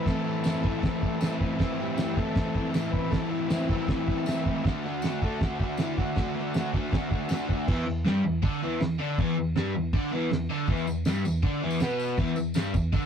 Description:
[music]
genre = garage rock duo or trio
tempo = 158 BPM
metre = 4/4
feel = straight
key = E minor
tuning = A4 = 439 Hz
[part]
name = combo organ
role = melody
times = 0.0-7.5 s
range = E4 to B4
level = -37 LUFS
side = left 3 dB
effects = spring reverb
[part]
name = crunchy overdriven guitar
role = riff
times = 0.0-13.1 s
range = E2 to F#4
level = -27 LUFS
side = equal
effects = none
[part]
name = cloth-damped thuddy drum kit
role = drums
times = 0.1-13.0 s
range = crash cymbal, kick drum, snare drum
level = -27 LUFS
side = right 1 dB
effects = none
[part]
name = tambourine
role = percussion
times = 0.4-7.4, 10.8-13.1 s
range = none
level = -46 LUFS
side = left 2 dB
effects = none
[sound]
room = wet booth ambience, RT60 0.2 s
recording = rough rehearsal-room recording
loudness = -25 LUFS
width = side -8 dB against mid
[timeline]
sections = 0.0-7.7 A section; 7.7-13.1 B section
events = none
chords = 0.0 Am; 4.6 D; 7.7 Em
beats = | 0.06 0.44 0.82 1.21 | 1.59 1.97 2.35 2.73 | 3.12 3.50 3.88 4.26 | 4.64 5.02 5.40 5.78 | 6.16 6.54 6.92 7.30 | 7.68 8.05 8.43 8.81 | 9.18 9.56 9.93 10.31 | 10.68 11.05 11.43 11.80 | 12.18 12.55 12.93

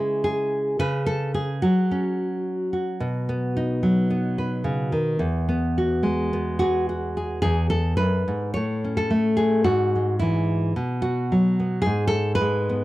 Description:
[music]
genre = folk, solo fingerstyle acoustic guitar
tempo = 109 BPM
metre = 4/4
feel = straight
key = E major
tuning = A4 = 439 Hz
[part]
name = nylon-string guitar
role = solo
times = 0.0-12.8 s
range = E2 to C#5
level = -21 LUFS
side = equal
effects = none
[sound]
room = small room ambience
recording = dry, close 1970s-style studio recording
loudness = -21 LUFS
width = side -17 dB against mid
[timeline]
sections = 0.0-7.4 A section; 7.4-12.8 B section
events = none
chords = 0.0 C#m; 0.8 F#sus2/C#; 3.0 B; 5.2 Eadd9; 7.4 E; 8.5 A; 9.6 E/G#; 10.8 B5; 11.9 G#m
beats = 0.24 | 0.80 1.35 1.90 2.45 | 3.00 3.55 4.09 4.65 | 5.20 5.75 6.31 6.87 | 7.43 7.99 8.54 9.10 | 9.65 10.20 10.75 11.30 | 11.86 12.41

